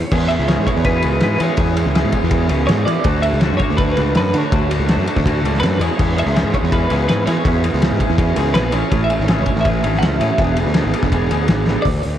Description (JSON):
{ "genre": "indie rock", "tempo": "164 BPM", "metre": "4/4", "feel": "straight", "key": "E mixolydian", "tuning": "A4 = 442 Hz", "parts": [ { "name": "twelve-string electric guitar", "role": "melody", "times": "0.0-12.2 s", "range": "B4 to F#5", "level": "-23 LUFS", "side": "equal", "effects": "tremolo, tape echo" }, { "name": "twangy electric guitar", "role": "riff", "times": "0.0-11.9 s", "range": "D3 to G#4", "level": "-26 LUFS", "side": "left 9 dB", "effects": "none" }, { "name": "raw garage guitar", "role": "riff", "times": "0.1-11.9 s", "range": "A2 to G#4", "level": "-22 LUFS", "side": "right 9 dB", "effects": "overdrive, lush chorus, tape echo" }, { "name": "fuzz fingered electric bass", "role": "bass", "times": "0.1-12.2 s", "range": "E1 to E3", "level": "-19 LUFS", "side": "left 1 dB", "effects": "overdrive" }, { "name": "loose indie drum kit", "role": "drums", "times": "0.1-12.1 s", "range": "crash cymbal, hi-hat, kick drum, ride cymbal, snare drum", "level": "-19 LUFS", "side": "left 1 dB", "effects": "tape echo" } ], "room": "light reverb", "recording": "echo-heavy mix", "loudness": "-14 LUFS", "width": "side -10 dB against mid", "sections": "0.1-11.9 A section", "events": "drum fill 11.7", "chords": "0.1 E6; 3.1 Dadd9; 5.8 E6; 8.7 Amaj7; 10.4 E7", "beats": "| 0.11 0.48 0.85 1.21 | 1.58 1.95 2.32 2.69 | 3.05 3.42 3.79 4.15 | 4.52 4.89 5.25 5.62 | 5.99 6.35 6.72 7.08 | 7.45 7.82 8.19 8.55 | 8.92 9.29 9.65 10.02 | 10.39 10.75 11.12 11.49 | 11.86" }